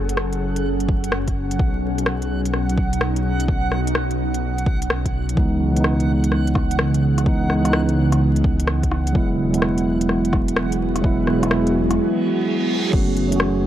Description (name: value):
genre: future garage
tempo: 127 BPM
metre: 4/4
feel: swing 66% on 16ths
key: F# dorian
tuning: A4 = 444 Hz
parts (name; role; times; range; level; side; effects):
- ethereal airy pad; sustained chords; 0.0-13.7 s; B2 to A4; -25 LUFS; right 1 dB; ensemble chorus, built-in reverb, sidechain pumping
- dark detuned saw bass; bass; 0.0-13.7 s; E1 to C#2; -23 LUFS; equal; tube saturation, sidechain pumping
- backwards swelling texture; texture; 0.0-12.0 s; F#5; -32 LUFS; right 3 dB; built-in reverb
- organic electronic drum kit; drums; 0.1-13.5 s; crash cymbal, hi-hat, rim click; -25 LUFS; left 1 dB; none
- electronic kick drum; drums; 0.9-13.1 s; none; -21 LUFS; equal; overdrive
- mellow tine electric piano; accompaniment; 5.4-13.7 s; E3 to F#4; -20 LUFS; right 1 dB; medium stereo tremolo, sidechain pumping, analog delay
- reverse cymbal; sound effects; 12.2-12.9 s; none; -29 LUFS; right 4 dB; none
room: digital ambience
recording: dry, gritty hardware recording, vinyl crackle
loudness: -17 LUFS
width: side -12 dB against mid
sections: 0.0-12.9 A section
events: reverse cymbal 12.2-12.9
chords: 0.0 F#m; 1.6 B7; 5.4 C#m7; 9.2 Eadd9; 12.9 F#m